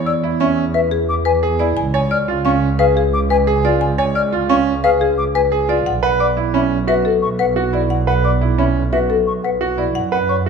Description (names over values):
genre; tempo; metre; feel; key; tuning
classical, minimalist pattern music; 176 BPM; 6/4; straight; unclear; A4 = 439 Hz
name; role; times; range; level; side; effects
clear grand piano; arpeggios; 0.0-10.5 s; C#4 to C#5; -19 LUFS; right 6 dB; none
clear studio double bass section; bass; 0.0-10.5 s; B1 to F#2; -20 LUFS; right 3 dB; none
marimba with medium hard mallets; melody; 0.1-10.5 s; G#4 to G#5; -19 LUFS; left 6 dB; none
mellow hollow silver concert flute; arpeggios; 0.1-10.4 s; E5 to E#6; -22 LUFS; left 3 dB; none
room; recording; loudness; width
moderate recital hall reverb, RT60 1.4 s; none; -14 LUFS; side -6 dB against mid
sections
0.0-10.5 A section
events
none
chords
0.0 E7; 1.8 C#7b9; 5.9 Bmadd9; 10.0 F#5